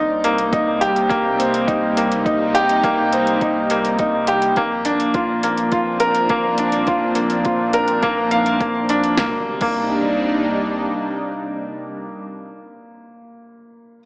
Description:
piano and strings electronica; 104 BPM; 4/4; straight; C minor; A4 = 440 Hz
lush unison pad; sustained chords; 0.0-12.2 s; Bb2 to Eb4; -24 LUFS; equal; chorus, phaser, sidechain pumping
bright upright piano; riff; 0.0-14.0 s; Bb3 to F5; -17 LUFS; equal; digital delay
warm sub bass; bass; 0.0-10.9 s; Bb1 to C2; -38 LUFS; equal; sidechain pumping
deep house drum kit; drums; 0.2-9.8 s; crash cymbal, hi-hat, snare drum; -28 LUFS; equal; overdrive
electronic kick drum; drums; 0.5-9.8 s; -25 LUFS; equal; overdrive
impact; sound effects; 9.2-13.0 s; -35 LUFS; equal
moderate lush hall reverb, RT60 2.2 s; small speaker sound; -16 LUFS; side -25 dB against mid
0.0-9.2 A section; 9.2-11.5 B section
0.0 Cm7; 4.6 Bb; 9.2 Cm7
0.52 1.10 1.68 | 2.25 2.83 3.41 3.98 | 4.56 5.14 5.71 6.29 | 6.87 7.45 8.02 8.60 | 9.18 9.75 10.33 10.91

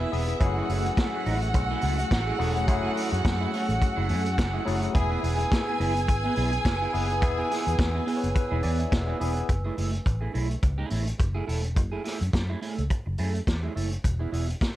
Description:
disco; 106 BPM; 4/4; swing 56% on 16ths; F# minor; A4 = 439 Hz
warm studio violin section; second line; 0.0-9.5 s; E4 to G#5; -31 LUFS; right 2 dB
barky tine electric piano; accompaniment; 0.0-9.5 s; F#3 to G#5; -33 LUFS; left 5 dB; overdrive, fast stereo tremolo
electric guitar at the edge of break-up; accompaniment; 0.0-14.7 s; A3 to B4; -33 LUFS; right 5 dB; phaser
glass harmonica; sustained chords; 0.0-9.5 s; A3 to E6; -35 LUFS; equal
vintage muted fingered electric bass; bass; 0.0-14.5 s; E1 to F#2; -28 LUFS; equal
vintage drum kit; drums; 0.1-14.8 s; hi-hat, kick drum, snare drum; -28 LUFS; equal
studio reverb; dark, warm production; -24 LUFS; side -14 dB against mid
0.0-9.5 A section; 9.5-14.8 B section
tine electric piano fill 7.8-9.5
0.4 F#m9; 4.9 E; 9.5 F#m9; 14.0 E
| 0.40 0.97 1.54 2.11 | 2.68 3.24 3.81 4.38 | 4.95 5.52 6.08 6.65 | 7.22 7.79 8.36 8.92 | 9.49 10.06 10.63 11.20 | 11.77 12.34 12.91 13.48 | 14.05 14.62

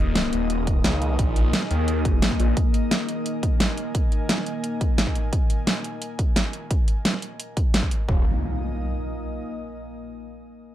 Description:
dark technical drum and bass; 174 BPM; 4/4; straight; A4 = 442 Hz
deep dark ambient pad; sustained chords; 0.0-8.2 s; Bb3 to Ab5; -31 LUFS; left 3 dB; chorus, built-in reverb, sidechain pumping
phased detuned saw bass; bass; 0.0-2.6, 8.1-8.2 s; Eb1 to Eb2; -23 LUFS; equal; phaser, overdrive, sidechain pumping
airy breathy pad; texture; 0.0-9.4 s; Bb3 to Eb6; -36 LUFS; equal; chorus, sidechain pumping
dubstep drum kit; drums; 0.2-8.0 s; hi-hat, snare drum; -24 LUFS; right 1 dB
electronic kick drum; drums; 0.7-8.2 s; -22 LUFS; equal
impact; sound effects; 8.1-9.5 s; -30 LUFS; equal
digital ambience; dark, warm production; -21 LUFS; side -12 dB against mid
0.0-8.1 A section; 8.1-9.5 B section
fade-out on analog synth pad 0.0-8.1; filter sweep on ambient pad 0.0-8.1
0.0 Eb5
0.15 0.50 0.84 | 1.19 1.53 1.88 2.22 | 2.57 2.91 3.26 3.60 | 3.95 4.29 4.64 4.98 | 5.33 5.67 6.02 6.36 | 6.71 7.05 7.40 7.74 | 8.09 8.43 8.78 9.12

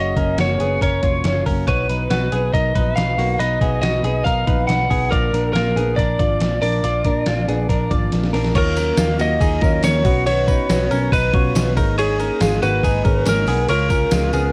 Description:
jangly indie pop; 140 BPM; 4/4; straight; A4 = 442 Hz
lightly driven lead guitar; melody; 0.0-14.5 s; Ab4 to F#5; -24 LUFS; equal
picked steel-string acoustic guitar; accompaniment; 0.0-14.5 s; Gb2 to Ab4; -29 LUFS; equal
direct-recorded clean electric guitar; arpeggios; 0.0-14.5 s; Ab3 to D5; -27 LUFS; equal; subtle chorus
vintage muted picked electric bass; bass; 0.0-14.5 s; F1 to Eb2; -24 LUFS; equal
dusty soul sampler-style drum kit; drums; 0.2-14.4 s; crash cymbal, hi-hat, kick drum, ride cymbal, snare drum; -24 LUFS; equal; cassette tape
tambourine; percussion; 8.8-14.4 s; -40 LUFS; equal
light reverb; home recording on cassette; -18 LUFS; mono
0.0-8.6 A section; 8.6-14.5 B section
drum fill 8.1-8.6
0.0 Gb; 1.7 B; 5.1 Bb; 8.6 Ebmadd9; 10.1 Badd9; 11.8 Absus2; 13.7 Db
0.38 0.81 1.24 | 1.68 2.11 2.54 2.97 | 3.40 3.83 4.26 4.69 | 5.12 5.55 5.98 6.41 | 6.84 7.27 7.70 8.12 | 8.55 8.98 9.41 9.84 | 10.27 10.69 11.12 11.55 | 11.98 12.41 12.83 13.26 | 13.69 14.12

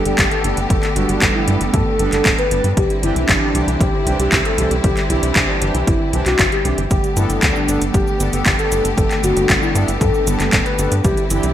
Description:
italo disco; 116 BPM; 4/4; straight; G major; A4 = 440 Hz
clear symphonic string section; sustained chords; 0.0-11.5 s; D3 to G4; -24 LUFS; left 2 dB
analog synth brass; stabs; 0.0-11.5 s; E3 to A4; -23 LUFS; right 3 dB; chorus
tight sequencer bass; bass; 0.0-11.5 s; D1 to G2; -20 LUFS; equal
soft octave-layered synth lead; melody; 0.1-11.5 s; D4 to B4; -21 LUFS; left 1 dB; chorus, phaser, digital delay
house drum kit; drums; 0.1-11.5 s; cabasa, handclaps, hi-hat; -20 LUFS; equal; overdrive, gated reverb
electronic kick drum; drums; 0.2-11.1 s; -20 LUFS; equal; overdrive
light reverb, digital ambience; bright 1980s-style digital production; -14 LUFS; side -11 dB against mid
0.0-11.5 A section
0.0 Gadd9; 2.8 Cadd9; 6.9 Gadd9
0.18 | 0.70 1.22 1.74 2.25 | 2.77 3.29 3.81 4.32 | 4.84 5.36 5.87 6.39 | 6.91 7.43 7.94 8.46 | 8.98 9.49 10.01 10.53 | 11.05

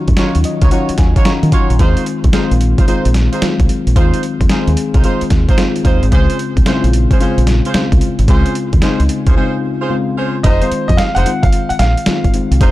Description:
R&B, new jack swing; 111 BPM; 4/4; swing 66% on 16ths; A4 = 439 Hz
mellow FM electric piano; accompaniment; 0.0-12.7 s; Db3 to C6; -18 LUFS; left 4 dB; chorus
deep dub fingered electric bass; bass; 0.1-12.7 s; F1 to Eb3; -14 LUFS; equal
boom bap sampler-style drum kit; drums; 0.1-12.7 s; hi-hat, kick drum, snare drum; -14 LUFS; equal; overdrive
mellow horn section; stabs; 0.2-12.7 s; Db4 to Db5; -22 LUFS; right 4 dB; digital delay
bright grand piano; melody; 10.4-12.3 s; C5 to Gb5; -18 LUFS; equal; digital delay
little or no reverb; dark, warm production; -11 LUFS; side -16 dB against mid
0.0-10.4 A section; 10.4-12.7 B section
FM electric piano fill 0.2-1.8; break 9.4-10.4
0.0 Ebm9; 1.8 Fm7; 6.1 Dbmaj7; 10.4 Fm7
0.17 0.71 1.26 | 1.80 2.34 2.88 3.42 | 3.96 4.50 5.04 5.58 | 6.12 6.66 7.20 7.74 | 8.28 8.82 9.36 9.90 | 10.45 10.98 11.53 12.07 | 12.61

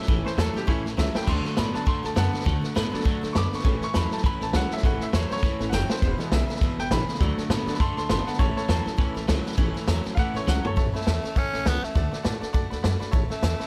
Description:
rockabilly; 202 BPM; 4/4; swing 58% on 8ths; A major; A4 = 440 Hz
bright upright piano; accompaniment; 0.0-13.7 s; E3 to D6; -34 LUFS; equal
picked steel-string acoustic guitar; accompaniment; 0.0-13.7 s; E2 to F#4; -38 LUFS; equal
electric guitar at the edge of break-up; riff; 0.0-10.7 s; E2 to B3; -34 LUFS; equal; analog chorus
vintage drum kit; drums; 0.0-13.6 s; crash cymbal, hi-hat, kick drum, snare drum, toms; -28 LUFS; equal
upright bass; bass; 0.1-13.6 s; E1 to A2; -30 LUFS; equal
growling tenor saxophone; melody; 10.9-13.7 s; A3 to C#4; -33 LUFS; equal
little or no reverb; -25 LUFS; mono
0.0-10.8 A section; 10.8-13.7 B section
upright piano solo 0.0-10.8; drum fill 1.0, 5.7, 10.5
0.0 A; 1.3 D; 3.6 A; 6.0 E; 7.2 D; 8.4 A; 11.9 D; 13.1 A
| 0.08 0.38 0.68 0.97 | 1.27 1.57 1.86 2.16 | 2.46 2.76 3.05 3.35 | 3.65 3.94 4.24 4.54 | 4.83 5.13 5.43 5.72 | 6.02 6.32 6.61 6.91 | 7.21 7.50 7.80 8.09 | 8.39 8.69 8.98 9.28 | 9.58 9.87 10.17 10.46 | 10.76 11.06 11.35 11.65 | 11.95 12.24 12.54 12.84 | 13.13 13.43

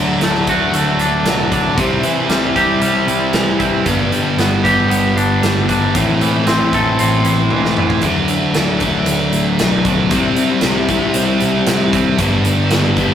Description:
quiet-loud alternative rock; 115 BPM; 4/4; straight; A4 = 440 Hz
twangy electric guitar; arpeggios; 0.0-8.0 s; G2 to A4; -18 LUFS; right 1 dB
scooped high-gain guitar; riff; 0.0-13.1 s; G2 to D4; -19 LUFS; right 7 dB; distortion
sludgy distorted guitar; riff; 0.0-13.1 s; G2 to F#4; -17 LUFS; left 4 dB; overdrive
picked electric bass; bass; 0.0-13.1 s; G1 to D3; -23 LUFS; right 1 dB
big rock drum kit; drums; 0.2-13.1 s; hi-hat, kick drum, snare drum, toms; -21 LUFS; right 1 dB
moderate stone room reverb, RT60 1.0 s; rough rehearsal-room recording, tube saturation; -12 LUFS; side -9 dB against mid
0.0-13.1 A section
drum fill 7.5-8.0
0.0 D; 1.8 C; 3.9 G; 6.0 Am; 8.0 D; 10.1 C; 12.2 G
0.22 0.74 1.26 | 1.79 2.31 2.83 3.35 | 3.87 4.39 4.91 5.43 | 5.96 6.48 7.00 7.52 | 8.04 8.55 9.07 9.59 | 10.11 10.63 11.15 11.67 | 12.19 12.71

